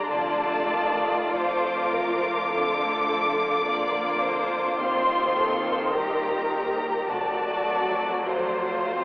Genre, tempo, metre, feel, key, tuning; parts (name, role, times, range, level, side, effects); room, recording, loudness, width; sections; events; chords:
classical, slow romantic movement for string orchestra; 46-53 BPM; 4/4; rubato; A4 = 440 Hz
rich studio violin section; melody; 0.0-9.0 s; C5 to D6; -27 LUFS; left 1 dB
rich studio violin section; second line; 0.0-9.0 s; F4 to D5; -26 LUFS; equal
dark studio viola section; accompaniment; 0.0-9.0 s; D3 to C4; -29 LUFS; equal
rich studio cello section; bass; 0.0-9.0 s; Eb2 to F2; -37 LUFS; right 1 dB
clear studio double bass section; bass; 0.1-8.2 s; F1 to Eb2; -47 LUFS; right 1 dB
wet cathedral reverb, RT60 7.3 s; in a vast, echoing space, telephone sound; -22 LUFS; side -26 dB against mid
0.0-9.0 A section
0.1 Dm/F; 4.8 Cm7/Eb; 7.1 F